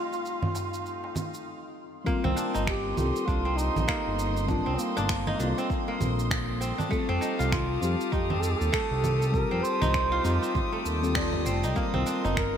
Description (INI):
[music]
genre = organic downtempo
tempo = 99 BPM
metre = 4/4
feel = swing 59% on 16ths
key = C dorian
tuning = A4 = 440 Hz
[part]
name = mellow duduk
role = melody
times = 0.0-12.6 s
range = Bb3 to C5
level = -32 LUFS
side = right 1 dB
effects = digital delay
[part]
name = muted felt-like synth keys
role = accompaniment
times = 0.0-12.6 s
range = G3 to D5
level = -33 LUFS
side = left 3 dB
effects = chorus, sidechain pumping, digital delay
[part]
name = warm chamber string section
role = sustained chords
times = 0.0-12.6 s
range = A3 to C6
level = -38 LUFS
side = right 2 dB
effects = sidechain pumping
[part]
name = drifting glass-harmonics texture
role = texture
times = 0.0-12.6 s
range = Eb4 to Eb6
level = -42 LUFS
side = left 1 dB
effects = chorus, built-in reverb
[part]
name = electronic shaker, congas and finger snaps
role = drums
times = 0.1-12.5 s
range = none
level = -34 LUFS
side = right 2 dB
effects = small room reverb
[part]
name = darbuka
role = percussion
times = 0.1-1.3, 12.2-12.3 s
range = none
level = -35 LUFS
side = left 1 dB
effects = none
[part]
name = kora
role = arpeggios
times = 2.1-12.6 s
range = A3 to F4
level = -33 LUFS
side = right 1 dB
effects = digital delay
[part]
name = electronic kick drum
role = drums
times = 2.1-12.5 s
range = none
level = -32 LUFS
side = equal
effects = small room reverb
[part]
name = smooth synth bass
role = bass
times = 2.2-12.6 s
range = F1 to F2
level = -29 LUFS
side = equal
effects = sidechain pumping
[sound]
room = moderate plate reverb, RT60 3.5 s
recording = bright 1980s-style digital production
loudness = -25 LUFS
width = side -8 dB against mid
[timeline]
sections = 0.0-2.1 A section; 2.1-12.6 B section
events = filter sweep on drum 0.0-2.1; stop 1.5-2.1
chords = 0.0 F9; 2.1 Cm9; 6.9 F9; 11.8 Cm9